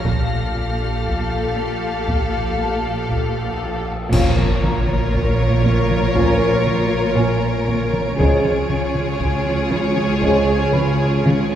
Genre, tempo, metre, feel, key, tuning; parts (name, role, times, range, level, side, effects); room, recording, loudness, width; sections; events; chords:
cinematic, suspense film score; 59 BPM; 4/4; straight; Bb phrygian; A4 = 440 Hz
warm symphonic violin section; melody; 0.0-11.6 s; Db5 to F5; -26 LUFS; left 1 dB
rich studio violin section; second line; 0.0-11.6 s; Ab4 to Bb4; -25 LUFS; left 1 dB
clear symphonic viola section; accompaniment; 0.0-11.6 s; F4 to G4; -28 LUFS; right 2 dB
taiko ensemble; drums; 0.0-11.2 s; -24 LUFS; equal
felt-muted upright piano; texture; 0.0-11.6 s; Cb5 to Db6; -35 LUFS; left 1 dB
rich symphonic violin section; texture; 0.0-11.6 s; Db5 to D7; -32 LUFS; left 1 dB
mellow French horn section; sustained chords; 0.1-10.6 s; Db4 to A4; -26 LUFS; left 3 dB
rich symphonic cello section; riff; 0.1-11.6 s; Bb2 to Db4; -25 LUFS; right 2 dB
rich symphonic cello section; bass; 0.1-11.6 s; Bb2 to Db3; -25 LUFS; right 1 dB
rich symphonic double bass section; bass; 0.1-11.6 s; Bb1 to Db2; -24 LUFS; right 1 dB
cymbal swell, clash cymbals and concert bass drum; percussion; 0.1-6.1 s; -26 LUFS; equal
dark trombone section; sustained chords; 4.1-10.6 s; F3 to Bb3; -28 LUFS; right 2 dB
wet scoring stage reverb, RT60 1.8 s; heard from further back in the room; -16 LUFS; side -10 dB against mid
0.0-4.1 A section; 4.1-11.6 B section
band accent 4.1-5.1
0.0 Fadd9/Bb; 4.1 Bbm; 8.2 Db